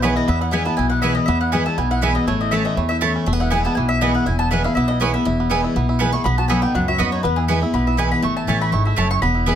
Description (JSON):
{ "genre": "bluegrass", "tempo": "242 BPM", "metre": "4/4", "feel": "swing 53% on 8ths", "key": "E major", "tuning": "A4 = 436 Hz", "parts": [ { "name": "bluegrass banjo", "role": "melody", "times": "0.0-9.6 s", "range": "E3 to A4", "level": "-26 LUFS", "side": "right 5 dB", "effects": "none" }, { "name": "mandolin", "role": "melody", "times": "0.0-9.6 s", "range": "G#4 to C#6", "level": "-24 LUFS", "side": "left 2 dB", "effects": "none" }, { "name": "picked steel-string acoustic guitar", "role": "accompaniment", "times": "0.0-9.6 s", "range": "E2 to F#4", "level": "-21 LUFS", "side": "left 3 dB", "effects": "none" }, { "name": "mandolin", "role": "stabs", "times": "0.0-9.6 s", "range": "A3 to B5", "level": "-24 LUFS", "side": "right 6 dB", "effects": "none" }, { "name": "upright bass", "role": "bass", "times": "0.0-9.6 s", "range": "E1 to E2", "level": "-22 LUFS", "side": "equal", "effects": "none" } ], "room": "little or no reverb", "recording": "close, detailed microphones", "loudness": "-16 LUFS", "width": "side -9 dB against mid", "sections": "0.0-9.6 A section", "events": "none", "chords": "0.0 E; 2.3 A; 3.3 E; 6.3 B; 7.2 E; 8.2 A", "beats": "0.03 | 0.28 0.53 0.78 1.03 | 1.28 1.53 1.78 2.03 | 2.27 2.52 2.77 3.02 | 3.27 3.52 3.77 4.02 | 4.26 4.51 4.76 5.01 | 5.26 5.51 5.75 6.00 | 6.25 6.50 6.75 7.00 | 7.24 7.49 7.74 7.99 | 8.23 8.48 8.73 8.98 | 9.23 9.47" }